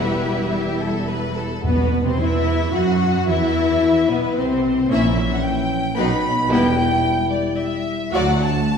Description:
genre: quick classical-period movement for symphony orchestra.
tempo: 111 BPM.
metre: 3/4.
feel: rubato.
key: E minor.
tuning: A4 = 438 Hz.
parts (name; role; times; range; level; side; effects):
rich chamber violin section; melody; 0.0-8.8 s; B4 to B5; -24 LUFS; left 1 dB; none.
clear chamber violin section; second line; 0.0-8.4 s; B3 to E5; -26 LUFS; left 2 dB; none.
rich studio viola section; accompaniment; 0.0-8.4 s; F#3 to F#4; -24 LUFS; equal; none.
rich studio cello section; bass; 0.0-8.6 s; D2 to F#3; -25 LUFS; right 2 dB; none.
rich symphonic double bass section; bass; 0.0-8.6 s; E1 to F#2; -26 LUFS; right 2 dB; none.
mellow French horn section; sustained chords; 1.6-8.3 s; E3 to F#4; -23 LUFS; left 4 dB; none.
timpani; percussion; 1.6-2.4 s; E2; -26 LUFS; right 1 dB; none.
room: wet scoring stage reverb, RT60 2.0 s.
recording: heard from further back in the room.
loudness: -17 LUFS.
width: side -6 dB against mid.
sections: 0.0-1.6 A section; 1.6-8.8 B section.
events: none.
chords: 0.0 Em; 1.6 E5/B; 2.7 N.C.; 3.3 Cmaj7; 4.9 A#dim7; 6.0 B; 6.5 Em; 8.1 D.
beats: 0.50 1.06 | 1.63 2.19 2.73 | 3.28 3.83 4.37 | 4.91 5.44 5.98 | 6.51 7.05 7.59 | 8.14 8.67.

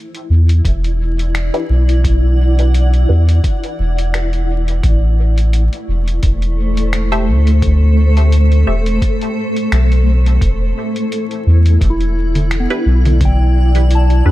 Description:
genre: ambient dub.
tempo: 86 BPM.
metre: 4/4.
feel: swing 55% on 16ths.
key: E minor.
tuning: A4 = 440 Hz.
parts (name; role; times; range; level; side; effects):
granular cloud pad; sustained chords; 0.0-14.3 s; A3 to F#5; -21 LUFS; equal; built-in reverb.
lo-fi sampler-style drum kit; drums; 0.1-14.2 s; congas, finger snaps, hi-hat; -25 LUFS; equal; dub echo.
soft dub sub bass; bass; 0.3-14.3 s; E1 to E2; -11 LUFS; equal; none.
electronic kick drum; drums; 0.6-13.4 s; none; -16 LUFS; equal; none.
filtered dub chord stab; stabs; 1.5-14.3 s; D4 to E5; -24 LUFS; equal; phaser, vintage 12-bit sampler grit, dub echo.
soft synth bell; arpeggios; 11.9-14.3 s; B3 to A5; -23 LUFS; left 2 dB; chorus, dub echo.
room: little or no reverb.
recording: echo-heavy mix, vinyl crackle.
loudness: -11 LUFS.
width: side -16 dB against mid.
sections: 0.0-14.3 A section.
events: none.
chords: 0.0 E7(no3); 4.8 Am; 10.4 Em7.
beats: 0.65 1.35 | 2.04 2.74 3.44 4.14 | 4.84 5.53 6.23 6.93 | 7.63 8.32 9.02 9.72 | 10.42 11.12 11.81 12.51 | 13.21 13.91.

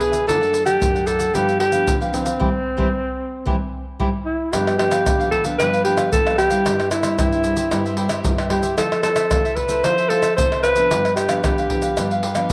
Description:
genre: samba and choro.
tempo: 113 BPM.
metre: 4/4.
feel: straight.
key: C major.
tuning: A4 = 440 Hz.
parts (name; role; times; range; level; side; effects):
breathy alto saxophone; melody; 0.0-12.2 s; C4 to C5; -22 LUFS; equal; none.
cavaquinho; accompaniment; 0.0-12.5 s; D4 to F#5; -30 LUFS; equal; none.
nylon-string guitar; accompaniment; 0.0-12.5 s; F#2 to A4; -28 LUFS; equal; none.
pandeiro, tube shaker, surdo and tamborim; percussion; 0.0-12.5 s; none; -26 LUFS; equal; none.
room: wet spring reverb, RT60 1.4 s.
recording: none.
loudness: -19 LUFS.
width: mono.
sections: 0.0-4.5 A section; 4.5-12.5 B section.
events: band accent 2.4-4.5.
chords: 0.3 D/F#; 1.3 G7; 2.4 C; 4.5 G7; 6.7 C/G; 8.8 Fmaj7; 10.9 G7.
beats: | 0.27 0.80 1.34 1.87 | 2.40 2.93 3.47 4.00 | 4.53 5.06 5.59 6.13 | 6.66 7.19 7.72 8.25 | 8.79 9.32 9.85 10.38 | 10.91 11.45 11.98 12.51.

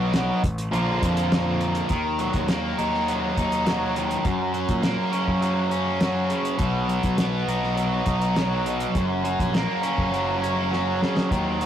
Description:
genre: classic rock.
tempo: 102 BPM.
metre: 4/4.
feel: straight.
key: F# major.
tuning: A4 = 440 Hz.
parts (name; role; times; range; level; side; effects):
distorted electric guitar; riff; 0.0-11.7 s; F#2 to E#4; -23 LUFS; equal; overdrive.
growling fingered electric bass; bass; 0.0-11.7 s; F#1 to A#2; -28 LUFS; equal; overdrive.
cloth-damped thuddy drum kit; drums; 0.1-11.7 s; hi-hat, kick drum, snare drum; -26 LUFS; equal; none.
room: light reverb.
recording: rough rehearsal-room recording, warm saturation.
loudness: -21 LUFS.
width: side -10 dB against mid.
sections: 0.0-1.9 A section; 1.9-11.7 B section.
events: drum fill 10.7-11.3.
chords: 0.4 N.C.; 0.7 A#; 1.9 D#m; 4.2 F#; 6.6 B; 9.0 F#.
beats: 0.14 0.72 1.31 | 1.89 2.48 3.07 3.65 | 4.24 4.83 5.42 6.01 | 6.60 7.19 7.78 8.37 | 8.95 9.54 10.13 10.72 | 11.31.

